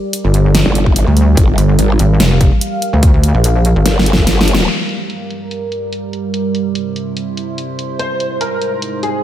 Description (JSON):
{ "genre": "heavy wobble dubstep", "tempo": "145 BPM", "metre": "4/4", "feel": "swing 54% on 16ths, half-time", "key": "G phrygian", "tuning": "A4 = 441 Hz", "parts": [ { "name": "evolving wavetable pad", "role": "sustained chords", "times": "0.0-9.2 s", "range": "G2 to F5", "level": "-20 LUFS", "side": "right 3 dB", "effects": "chorus, built-in reverb, sidechain pumping" }, { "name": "big-room dance drum kit", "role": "drums", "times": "0.1-9.1 s", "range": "crash cymbal, hi-hat, snare drum", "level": "-17 LUFS", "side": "equal", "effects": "low-pass filter on hats, low-pass filter on snare, low-pass filter on cymbals" }, { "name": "pulsing pluck wobble bass", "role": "bass", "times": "0.2-3.8 s", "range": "F1 to D2", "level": "-10 LUFS", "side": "equal", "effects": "chorus, overdrive" }, { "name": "growl bass", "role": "bass", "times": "0.7-4.7 s", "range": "G1 to Ab1", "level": "-13 LUFS", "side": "equal", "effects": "chorus, overdrive" }, { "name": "electronic kick drum", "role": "drums", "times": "0.9-4.3 s", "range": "none", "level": "-12 LUFS", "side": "equal", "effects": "none" }, { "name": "clear grand piano", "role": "melody", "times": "8.0-9.2 s", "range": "Ab4 to C5", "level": "-19 LUFS", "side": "equal", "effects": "analog chorus, tape echo" } ], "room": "light reverb, digital ambience", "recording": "none", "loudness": "-11 LUFS", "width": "side -11 dB against mid", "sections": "0.0-4.7 A section; 4.7-9.2 B section", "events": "drop 0.0-4.7; drum fill 3.9-4.7; kick drops out 4.3-4.7; band accent 4.5; filter sweep on ambient pad 4.7-9.2", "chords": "0.0 Gm; 6.3 C; 8.0 Ab" }